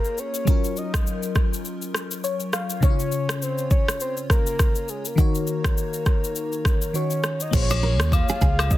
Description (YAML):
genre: afrobeats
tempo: 102 BPM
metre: 4/4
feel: swing 58% on 16ths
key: Bb minor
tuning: A4 = 439 Hz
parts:
  - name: soft octave-layered synth lead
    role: melody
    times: 0.0-8.8 s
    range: Ab4 to F5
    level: -29 LUFS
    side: left 2 dB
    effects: chorus, tape echo
  - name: FM electric piano with soft pad layer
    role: accompaniment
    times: 0.0-8.8 s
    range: Db3 to F5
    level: -28 LUFS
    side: left 2 dB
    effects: chorus, phaser
  - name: afro-pop drum kit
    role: drums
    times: 0.0-8.8 s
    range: crash cymbal, kick drum, rim click, shaker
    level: -22 LUFS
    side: equal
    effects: soft clipping on snare
  - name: glass harmonica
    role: sustained chords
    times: 7.5-8.8 s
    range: Bb3 to Db5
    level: -38 LUFS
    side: right 1 dB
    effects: none
  - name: vintage muted fingered electric bass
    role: bass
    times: 7.5-8.8 s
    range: Bb1 to Eb2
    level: -22 LUFS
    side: equal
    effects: none
  - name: nylon-string guitar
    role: riff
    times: 7.7-8.5 s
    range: Ab4 to Db5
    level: -29 LUFS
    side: right 4 dB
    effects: none
  - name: agogo bells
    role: percussion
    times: 7.7-8.7 s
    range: none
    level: -31 LUFS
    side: left 6 dB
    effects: none
room: little or no reverb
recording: dense, heavily limited modern master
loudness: -20 LUFS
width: side -15 dB against mid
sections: 0.0-7.5 A section; 7.5-8.8 B section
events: FM electric piano fill 1.9-2.8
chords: 0.5 Gbmaj7; 2.8 Db; 5.2 Ebm7; 7.5 Bbm7